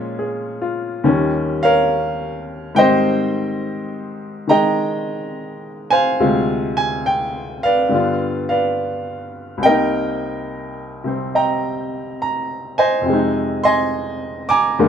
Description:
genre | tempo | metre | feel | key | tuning
solo jazz | 70 BPM | 4/4 | swing 66% on 8ths | unclear | A4 = 440 Hz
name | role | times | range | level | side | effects
clear baby grand piano | solo | 0.0-14.9 s | C2 to D6 | -17 LUFS | equal | none
room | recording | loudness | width
moderate small room reverb, RT60 0.6 s | none | -16 LUFS | side -8 dB against mid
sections
0.0-14.9 A section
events
none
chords
0.0 Bbm7; 1.1 Eb7; 2.8 Abmaj7; 6.2 Dm7b5; 7.9 G7; 9.6 Cm7; 13.1 Fm7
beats
0.19 1.05 1.91 | 2.77 3.63 4.48 5.34 | 6.20 7.06 7.92 8.77 | 9.63 10.49 11.35 12.21 | 13.07 13.93 14.78

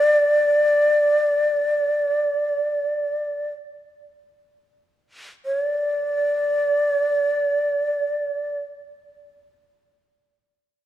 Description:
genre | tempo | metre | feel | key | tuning
japanese traditional | free time | none | none | unclear | A4 = 439 Hz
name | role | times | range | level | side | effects
breathy bright long shakuhachi | solo | 0.0-8.6 s | D5 | -19 LUFS | equal | none
room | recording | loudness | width
moderate concert hall reverb, RT60 2.4 s | dark, warm production | -19 LUFS | side -12 dB against mid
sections
0.0-5.5 A section; 5.5-10.9 B section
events
slowing down 0.0-5.5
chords
none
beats
free time

